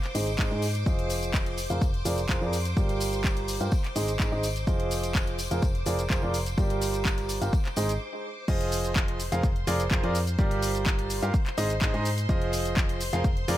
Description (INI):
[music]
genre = piano house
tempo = 126 BPM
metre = 4/4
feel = straight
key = F dorian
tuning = A4 = 440 Hz
[part]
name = string machine, violins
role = sustained chords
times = 0.0-13.6 s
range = C5 to D6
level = -38 LUFS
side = equal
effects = ensemble chorus, sidechain pumping
[part]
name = house drum kit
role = drums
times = 0.0-13.6 s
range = crash cymbal, handclaps, hi-hat, shaker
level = -33 LUFS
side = left 1 dB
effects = overdrive, small room ambience
[part]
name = tambourine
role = percussion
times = 0.0-8.0 s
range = none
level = -44 LUFS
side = left 6 dB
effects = none
[part]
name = clear grand piano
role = riff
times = 0.1-13.6 s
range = F3 to F5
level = -30 LUFS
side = right 2 dB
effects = sidechain pumping, low-pass filter, digital delay
[part]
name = solid FM bass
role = bass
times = 0.1-13.6 s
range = F1 to Ab2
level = -30 LUFS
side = equal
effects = sidechain pumping
[part]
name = electronic kick drum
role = drums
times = 0.4-13.3 s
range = none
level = -26 LUFS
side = equal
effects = overdrive, small room ambience
[sound]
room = digital ambience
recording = none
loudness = -24 LUFS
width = side -13 dB against mid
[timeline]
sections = 0.0-8.5 A section; 8.5-13.6 B section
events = break 8.0-8.5; drop 8.5-13.6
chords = 0.0 Ab; 0.9 Fm7; 1.6 Bb7/F; 2.8 Gm7; 3.7 Ab; 4.7 Fm7; 5.4 Bb7/F; 6.6 Gm7; 7.5 Ab; 8.5 Fm7; 9.2 Bb7/F; 10.4 Gm7; 11.3 Ab; 12.3 Fm7; 13.0 Bb7/F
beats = 0.39 | 0.86 1.34 1.82 2.29 | 2.77 3.24 3.72 4.20 | 4.67 5.15 5.62 6.10 | 6.58 7.05 7.53 8.01 | 8.48 8.96 9.44 9.91 | 10.39 10.86 11.34 11.82 | 12.29 12.77 13.24